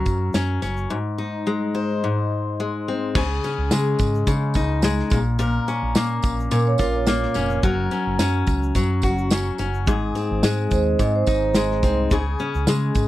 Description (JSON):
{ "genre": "acoustic pop", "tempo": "107 BPM", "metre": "4/4", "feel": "swing 55% on 16ths", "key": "unclear", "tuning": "A4 = 442 Hz", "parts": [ { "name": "picked steel-string acoustic guitar", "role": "accompaniment", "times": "0.0-13.1 s", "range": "Ab2 to C5", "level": "-22 LUFS", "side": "left 3 dB", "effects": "none" }, { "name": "fingered electric bass", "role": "bass", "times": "0.1-13.1 s", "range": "F1 to Db3", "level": "-24 LUFS", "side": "right 1 dB", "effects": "none" }, { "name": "modern studio drum kit", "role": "drums", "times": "0.1-13.1 s", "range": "crash cymbal, kick drum, shaker, snare drum", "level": "-22 LUFS", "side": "equal", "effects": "none" }, { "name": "tambourine", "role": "percussion", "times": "0.1-13.1 s", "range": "none", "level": "-36 LUFS", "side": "right 14 dB", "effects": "none" }, { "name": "vibraphone with medium mallets", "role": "second line", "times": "6.5-11.9 s", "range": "Bb4 to Eb5", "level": "-24 LUFS", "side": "right 6 dB", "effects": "none" } ], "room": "little or no reverb", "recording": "dry, close 1970s-style studio recording", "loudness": "-19 LUFS", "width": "side -15 dB against mid", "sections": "0.0-3.1 A section; 3.1-13.1 B section", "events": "none", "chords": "0.0 Gb; 0.9 Ab; 3.1 Dbsus2; 5.1 Bbm; 7.6 Gb; 9.9 Ab; 12.1 Db5", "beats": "0.34 | 0.91 1.47 2.03 2.59 | 3.15 3.71 4.27 4.83 | 5.39 5.95 6.51 7.07 | 7.63 8.19 8.75 9.31 | 9.87 10.43 10.99 11.55 | 12.11 12.67" }